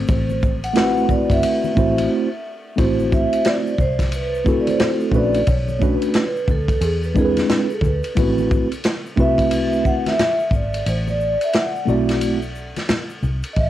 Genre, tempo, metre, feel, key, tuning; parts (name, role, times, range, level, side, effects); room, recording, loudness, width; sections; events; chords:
hip hop, jazz-hop; 89 BPM; 4/4; swing 63% on 16ths; A dorian; A4 = 440 Hz
mellow electric guitar; second line; 0.0-0.6 s; A3 to C4; -28 LUFS; left 7 dB; wide subtle chorus, cassette tape, tape echo
fingered electric bass; bass; 0.0-13.7 s; G1 to E2; -24 LUFS; equal
vibraphone with soft mallets; melody; 0.1-13.7 s; G#4 to F#5; -23 LUFS; right 1 dB; cassette tape, tape echo, plate reverb
vintage drum kit; drums; 0.1-13.7 s; hi-hat, kick drum, ride cymbal, snare drum; -22 LUFS; equal; cassette tape
tube shaker and congas; percussion; 0.1-13.5 s; -33 LUFS; left 7 dB
tine electric piano; accompaniment; 0.7-12.4 s; G#3 to D5; -19 LUFS; right 1 dB; medium stereo tremolo, cassette tape, plate reverb
light reverb; home recording on cassette; -16 LUFS; side -13 dB against mid
0.0-2.8 A section; 2.8-13.6 B section
break 2.1-2.8, 10.9-13.6; vibraphone solo 2.8-13.6
0.0 Am69; 2.8 Am6; 5.5 Bm7; 6.8 E7b13; 8.2 Am69